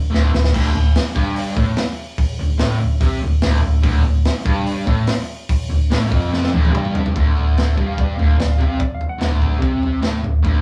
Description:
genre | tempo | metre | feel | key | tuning
garage rock duo or trio | 145 BPM | 4/4 | straight | unclear | A4 = 440 Hz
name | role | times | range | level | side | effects
fuzz guitar | riff | 0.0-10.6 s | D2 to C3 | -24 LUFS | equal | distortion
hollow-body short-scale fingered electric bass | bass | 0.0-10.6 s | D1 to C2 | -20 LUFS | equal | overdrive
crunchy breakbeat drum kit | drums | 0.1-10.6 s | crash cymbal, hi-hat, kick drum, snare drum, toms | -22 LUFS | equal | none
clean lap steel guitar | melody | 7.9-9.3 s | D5 to F#5 | -32 LUFS | equal | none
room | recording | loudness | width
light reverb | band playing live in one room, small room ambience | -18 LUFS | mono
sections
0.0-7.2 A section; 7.2-10.6 B section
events
drum fill 0.1-0.6, 6.3-7.2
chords
0.0 D5; 7.2 N.C.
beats
0.14 | 0.55 0.97 1.38 1.79 | 2.21 2.62 3.03 3.44 | 3.86 4.27 4.68 5.09 | 5.51 5.92 6.33 6.75 | 7.16 7.57 7.98 8.40 | 8.81 9.22 9.63 10.05 | 10.46

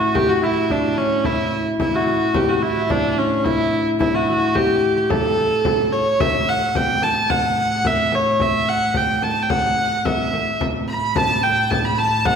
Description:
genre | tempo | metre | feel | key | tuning
medieval dance | 109 BPM | 2/4 | straight | A mixolydian | A4 = 435 Hz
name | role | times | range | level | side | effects
rich hurdy-gurdy | melody | 0.0-12.4 s | C#4 to B5 | -18 LUFS | equal | none
concert harp | second line | 0.0-7.3 s | C#4 to A4 | -23 LUFS | equal | none
dark viola da gamba | drone | 0.0-12.4 s | A2 | -27 LUFS | right 2 dB | none
frame drum | percussion | 0.2-12.4 s | none | -25 LUFS | left 2 dB | none
room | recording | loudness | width
wet scoring stage reverb, RT60 1.5 s | recorded in a church or concert hall | -16 LUFS | side -6 dB against mid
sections
0.0-6.2 A section; 6.2-12.4 B section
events
none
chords
none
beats
0.15 | 0.70 1.25 | 1.80 2.35 | 2.90 3.45 | 4.00 4.55 | 5.10 5.65 | 6.20 6.75 | 7.30 7.85 | 8.40 8.95 | 9.50 10.05 | 10.60 11.15 | 11.70 12.25

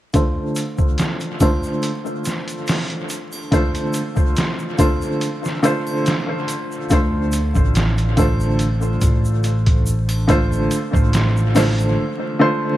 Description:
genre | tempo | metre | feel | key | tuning
trip hop | 71 BPM | 4/4 | swing 53% on 16ths | D minor | A4 = 440 Hz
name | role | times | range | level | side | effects
felt-muted upright piano | accompaniment | 0.1-12.8 s | D3 to C5 | -20 LUFS | equal | tremolo, low-pass filter, tape echo
trip hop sampler-style drum kit | drums | 0.1-12.0 s | hi-hat, kick drum, snare drum | -20 LUFS | equal | dub echo
egg shaker and triangle | percussion | 0.1-11.9 s | none | -36 LUFS | right 2 dB | dub echo
upright bass | bass | 6.9-11.9 s | A1 to D2 | -18 LUFS | equal | none
room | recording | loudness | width
light reverb, small room ambience | echo-heavy mix, vinyl crackle | -16 LUFS | side -14 dB against mid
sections
0.1-12.8 A section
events
filter sweep on felt piano 0.1-12.8; break 12.0-12.8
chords
0.1 Dm7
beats
| 0.14 0.99 1.83 2.68 | 3.52 4.37 5.21 6.06 | 6.91 7.75 8.60 9.44 | 10.29 11.13 11.98

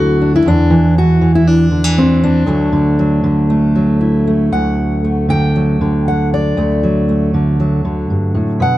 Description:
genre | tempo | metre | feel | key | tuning
folk, solo fingerstyle acoustic guitar | 118 BPM | 4/4 | straight | D major | A4 = 440 Hz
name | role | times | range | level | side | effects
fingerpicked steel-string acoustic guitar | solo | 0.0-8.8 s | D2 to G5 | -11 LUFS | equal | none
room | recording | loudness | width
light reverb | dry, close 1970s-style studio recording | -11 LUFS | side -15 dB against mid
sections
0.0-4.5 A section; 4.5-8.8 B section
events
none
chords
0.5 Cadd9/E; 2.5 Dadd9; 4.5 D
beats
| 0.46 0.96 1.47 1.97 | 2.48 2.98 3.50 4.01 | 4.52 5.04 5.55 6.07 | 6.58 7.08 7.59 8.10 | 8.60

